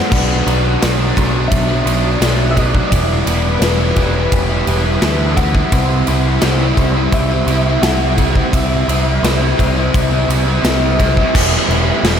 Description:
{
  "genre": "rock, shoegaze and dream pop",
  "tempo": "86 BPM",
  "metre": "4/4",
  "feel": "straight",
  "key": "E minor",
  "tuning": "A4 = 441 Hz",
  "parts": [
    { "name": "electric guitar through a small old amp", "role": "melody", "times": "0.0-10.6 s", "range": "B4 to F#5", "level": "-24 LUFS", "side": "left 2 dB", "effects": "analog delay" },
    { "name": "biting overdriven guitar", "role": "riff", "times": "0.0-12.2 s", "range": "B2 to E4", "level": "-16 LUFS", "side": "equal", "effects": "lush chorus" },
    { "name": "growling picked electric bass", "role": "bass", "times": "0.1-12.2 s", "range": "E1 to D2", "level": "-17 LUFS", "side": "equal", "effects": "overdrive" },
    { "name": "big rock drum kit", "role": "drums", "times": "0.1-12.2 s", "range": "crash cymbal, kick drum, ride cymbal, snare drum", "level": "-18 LUFS", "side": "equal", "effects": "none" }
  ],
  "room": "moderate huge ambient reverb, RT60 6.9 s",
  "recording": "dreamy mix soaked in reverb, faint mains hum",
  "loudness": "-12 LUFS",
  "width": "side -8 dB against mid",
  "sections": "0.1-11.3 A section",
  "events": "none",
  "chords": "0.1 Bm; 2.9 Em7; 5.7 C; 11.3 Em",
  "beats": "| 0.11 0.81 1.51 2.21 | 2.91 3.62 4.32 5.02 | 5.72 6.42 7.12 7.83 | 8.53 9.23 9.94 10.64 | 11.34 12.04"
}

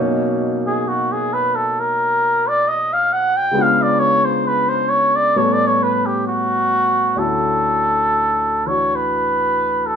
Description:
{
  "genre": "jazz",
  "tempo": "67 BPM",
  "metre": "4/4",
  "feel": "swing 67% on 8ths",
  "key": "unclear",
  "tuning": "A4 = 442 Hz",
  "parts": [
    { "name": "warm baby grand piano", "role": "accompaniment", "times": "0.0-10.0 s", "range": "D2 to A4", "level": "-22 LUFS", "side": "left 1 dB", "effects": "none" },
    { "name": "trumpet with cup mute", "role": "melody", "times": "0.7-10.0 s", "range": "F#4 to G5", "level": "-16 LUFS", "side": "equal", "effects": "none" }
  ],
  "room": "moderate studio reverb, RT60 0.7 s",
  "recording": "band playing live in one room",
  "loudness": "-15 LUFS",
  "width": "side -7 dB against mid",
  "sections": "0.0-7.2 A section; 7.2-10.0 B section",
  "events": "muted trumpet solo 0.0-7.2",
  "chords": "0.0 Bmaj9; 3.5 C#7b9; 5.3 A9; 7.2 Dmaj9",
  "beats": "0.85 1.74 2.64 | 3.54 4.44 5.34 6.25 | 7.15 8.06 8.97 9.87"
}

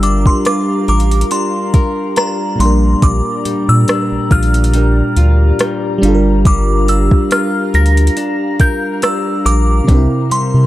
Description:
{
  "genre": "contemporary R&B",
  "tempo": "70 BPM",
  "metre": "4/4",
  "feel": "swing 54% on 16ths",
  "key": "G dorian",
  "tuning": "A4 = 440 Hz",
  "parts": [
    { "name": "glassy synth bell", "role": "melody", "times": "0.0-10.7 s", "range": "Bb5 to Bb6", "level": "-19 LUFS", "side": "equal", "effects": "chorus, digital delay" },
    { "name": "FM electric piano", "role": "accompaniment", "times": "0.0-10.7 s", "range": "Bb2 to Bb4", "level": "-18 LUFS", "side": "right 2 dB", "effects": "chorus" },
    { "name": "glassy FM pad", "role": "sustained chords", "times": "0.0-10.7 s", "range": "E4 to Bb5", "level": "-24 LUFS", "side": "left 3 dB", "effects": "ensemble chorus, built-in reverb" },
    { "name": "direct-recorded clean electric guitar", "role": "arpeggios", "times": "0.0-10.7 s", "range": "Bb2 to Bb4", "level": "-22 LUFS", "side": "left 3 dB", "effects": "digital delay" },
    { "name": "round analog bass", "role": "bass", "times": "0.0-10.7 s", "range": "G1 to C3", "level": "-12 LUFS", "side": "equal", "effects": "none" },
    { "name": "smooth R&B drum kit", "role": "drums", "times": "0.0-10.5 s", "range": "hi-hat, kick drum, rim click", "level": "-14 LUFS", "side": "equal", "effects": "none" }
  ],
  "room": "digital ambience",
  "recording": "dark, warm production",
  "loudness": "-11 LUFS",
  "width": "side -15 dB against mid",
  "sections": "0.0-10.7 A section",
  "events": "none",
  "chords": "0.0 Gm7; 2.6 Bb6; 6.0 Gm7; 9.9 C7",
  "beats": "0.45 1.31 2.17 | 3.02 3.88 4.74 5.60 | 6.45 7.31 8.17 9.03 | 9.88"
}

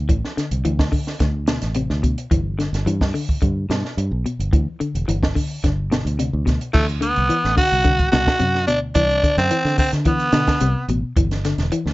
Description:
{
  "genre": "afrobeat",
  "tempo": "108 BPM",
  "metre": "4/4",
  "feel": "straight",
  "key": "D mixolydian",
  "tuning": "A4 = 439 Hz",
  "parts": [
    { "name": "clean electric guitar", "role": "arpeggios", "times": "0.0-11.9 s", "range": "B2 to E3", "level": "-24 LUFS", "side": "left 3 dB", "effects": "none" },
    { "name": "fingered electric bass", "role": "bass", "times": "0.0-11.9 s", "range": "E1 to D3", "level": "-22 LUFS", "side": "equal", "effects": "none" },
    { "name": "compact cocktail drum kit", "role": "drums", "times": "0.1-11.9 s", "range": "crash cymbal, hi-hat, kick drum, snare drum", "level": "-21 LUFS", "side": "equal", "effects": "none" },
    { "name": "breathy tenor saxophone", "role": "melody", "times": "6.7-10.9 s", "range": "A3 to F#4", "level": "-19 LUFS", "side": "right 1 dB", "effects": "none" }
  ],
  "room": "light reverb",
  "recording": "nothing above 7.8 kHz",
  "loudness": "-17 LUFS",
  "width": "side -19 dB against mid",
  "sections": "0.0-6.7 A section; 6.7-11.9 B section",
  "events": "none",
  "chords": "0.0 D7sus2; 2.3 G6; 6.7 D13; 11.2 G5",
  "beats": "| 0.08 0.64 1.20 1.75 | 2.31 2.86 3.42 3.97 | 4.53 5.08 5.63 6.19 | 6.74 7.29 7.85 8.40 | 8.95 9.50 10.06 10.61 | 11.16 11.71"
}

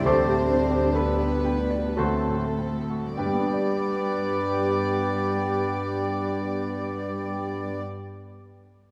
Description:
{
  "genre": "classical",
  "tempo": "48-72 BPM",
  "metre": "3/4",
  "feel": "rubato",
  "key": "G major",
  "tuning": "A4 = 440 Hz",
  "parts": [
    { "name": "bright concert grand piano", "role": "melody", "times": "0.0-8.9 s", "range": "D2 to C6", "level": "-31 LUFS", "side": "equal", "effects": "none" },
    { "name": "warm symphonic violin section", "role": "melody", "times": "0.0-7.8 s", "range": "A4 to D5", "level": "-43 LUFS", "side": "equal", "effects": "none" },
    { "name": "mellow clarinet", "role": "second line", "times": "0.0-7.8 s", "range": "F#4 to G4", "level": "-37 LUFS", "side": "equal", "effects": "none" },
    { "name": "mellow hollow flute section", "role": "second line", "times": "0.0-7.8 s", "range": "A4 to G5", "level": "-34 LUFS", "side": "equal", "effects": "none" },
    { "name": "warm symphonic violin section", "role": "second line", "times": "0.0-7.8 s", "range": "A4 to D5", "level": "-41 LUFS", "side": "equal", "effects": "none" },
    { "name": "dark studio viola section", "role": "accompaniment", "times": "0.0-7.8 s", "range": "B3 to G4", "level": "-35 LUFS", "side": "equal", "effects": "none" },
    { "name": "mellow bassoon", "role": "accompaniment", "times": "0.0-7.8 s", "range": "A3 to B3", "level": "-36 LUFS", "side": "equal", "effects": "none" },
    { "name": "mellow French horn section", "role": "sustained chords", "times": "0.0-7.8 s", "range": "F#3 to D4", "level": "-36 LUFS", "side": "equal", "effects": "none" },
    { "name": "mellow trumpet", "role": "stabs", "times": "0.0-7.8 s", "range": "A4 to B4", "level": "-39 LUFS", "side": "equal", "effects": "none" },
    { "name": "warm studio cello section", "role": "bass", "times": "0.0-7.8 s", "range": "G3 to C4", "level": "-36 LUFS", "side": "equal", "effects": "none" },
    { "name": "warm symphonic double bass section", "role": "bass", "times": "0.0-7.8 s", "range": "D2 to G2", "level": "-36 LUFS", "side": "equal", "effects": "none" },
    { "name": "warm oboe", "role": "second line", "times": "0.1-7.8 s", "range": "C5 to D5", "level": "-36 LUFS", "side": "equal", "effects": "none" }
  ],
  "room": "moderate concert hall reverb, RT60 2.4 s",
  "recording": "none",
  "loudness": "-26 LUFS",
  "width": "mono",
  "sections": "0.0-3.2 A section; 3.2-8.9 B section",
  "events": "slowing down 0.0-3.2",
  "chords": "0.1 D7sus4; 2.0 D7; 3.2 G",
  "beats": "| 0.05 0.94 1.97 | 3.17 4.35 5.50 | 6.63 7.79"
}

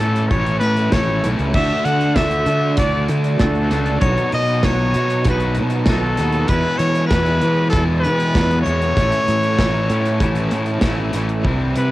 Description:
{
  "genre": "indie rock",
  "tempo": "97 BPM",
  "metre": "4/4",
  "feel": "straight",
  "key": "unclear",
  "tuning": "A4 = 437 Hz",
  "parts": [
    { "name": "brilliant trumpet", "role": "melody", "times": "0.0-11.9 s", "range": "A4 to F#5", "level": "-21 LUFS", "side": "left 1 dB", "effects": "cassette tape" },
    { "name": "glockenspiel with hard plastic mallets", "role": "second line", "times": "0.0-10.8 s", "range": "A6 to F#7", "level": "-34 LUFS", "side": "right 3 dB", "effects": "none" },
    { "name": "cranked stack guitar", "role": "riff", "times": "0.0-11.9 s", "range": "E2 to F#4", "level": "-24 LUFS", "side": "left 4 dB", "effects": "overdrive, cassette tape" },
    { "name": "raw garage guitar", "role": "riff", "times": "0.0-11.9 s", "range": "A2 to F#4", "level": "-26 LUFS", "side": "right 6 dB", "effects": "overdrive, ensemble chorus, cassette tape, analog delay" },
    { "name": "fuzz fingered electric bass", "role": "bass", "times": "0.0-11.9 s", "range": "A1 to E3", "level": "-20 LUFS", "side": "equal", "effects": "overdrive" },
    { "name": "big rock drum kit", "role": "drums", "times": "0.0-11.9 s", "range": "crash cymbal, hi-hat, kick drum, snare drum", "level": "-21 LUFS", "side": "equal", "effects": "cassette tape" }
  ],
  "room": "light reverb",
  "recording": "home recording on cassette",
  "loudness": "-15 LUFS",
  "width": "side -16 dB against mid",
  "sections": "0.0-11.5 A section",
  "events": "none",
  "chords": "0.0 Aadd9; 1.5 Dadd9; 4.0 B; 6.5 E; 9.0 A",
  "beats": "0.30 0.92 | 1.54 2.17 2.78 3.40 | 4.02 4.64 5.26 5.88 | 6.50 7.12 7.74 8.36 | 8.98 9.60 10.21 10.84 | 11.46"
}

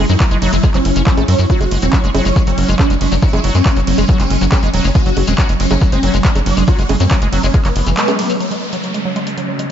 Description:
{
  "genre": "psychedelic trance",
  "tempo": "139 BPM",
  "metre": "4/4",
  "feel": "straight",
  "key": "F# minor",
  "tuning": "A4 = 442 Hz",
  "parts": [
    { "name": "swarming drone", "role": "sustained chords", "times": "0.0-9.7 s", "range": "F#3 to E4", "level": "-22 LUFS", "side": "right 3 dB", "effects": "built-in reverb, sidechain pumping" },
    { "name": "liquid acid bass", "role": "riff", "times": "0.0-9.7 s", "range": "E3 to C#4", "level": "-22 LUFS", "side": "equal", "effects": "chorus, auto-pan, sidechain pumping, analog delay" },
    { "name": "tight sequencer bass", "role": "bass", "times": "0.0-7.9 s", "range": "E1 to F#2", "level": "-15 LUFS", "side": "equal", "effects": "none" },
    { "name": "swarming rave lead", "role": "melody", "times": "0.1-8.3 s", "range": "B3 to F#4", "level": "-21 LUFS", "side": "left 1 dB", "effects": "chorus, phaser, sidechain pumping, analog delay" },
    { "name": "techno drum kit", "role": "drums", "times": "0.1-9.7 s", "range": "bongos, handclaps, hi-hat, ride cymbal", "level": "-22 LUFS", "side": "right 1 dB", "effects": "overdrive" },
    { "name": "shekere", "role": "percussion", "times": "0.1-8.4 s", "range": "none", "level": "-30 LUFS", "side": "left 6 dB", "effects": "none" },
    { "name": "electronic kick drum", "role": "drums", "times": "0.2-7.6 s", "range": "none", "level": "-13 LUFS", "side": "equal", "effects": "none" },
    { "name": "downlifter", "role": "sound effects", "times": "8.4-9.7 s", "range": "none", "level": "-26 LUFS", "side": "equal", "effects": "none" },
    { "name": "deep dark ambient pad", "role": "texture", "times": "8.8-9.7 s", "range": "C#4 to F#5", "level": "-27 LUFS", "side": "left 1 dB", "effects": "chorus, built-in reverb, sidechain pumping" }
  ],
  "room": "light reverb",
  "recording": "nothing above 7.7 kHz",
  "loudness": "-12 LUFS",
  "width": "side -9 dB against mid",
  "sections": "0.0-8.4 A section; 8.4-9.7 B section",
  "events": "drop 0.0-8.4; band accent 8.0",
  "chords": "0.0 F#5",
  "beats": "0.20 0.64 1.07 | 1.50 1.93 2.36 2.79 | 3.23 3.66 4.09 4.52 | 4.95 5.38 5.82 6.25 | 6.68 7.11 7.54 7.97 | 8.40 8.84 9.27 9.70"
}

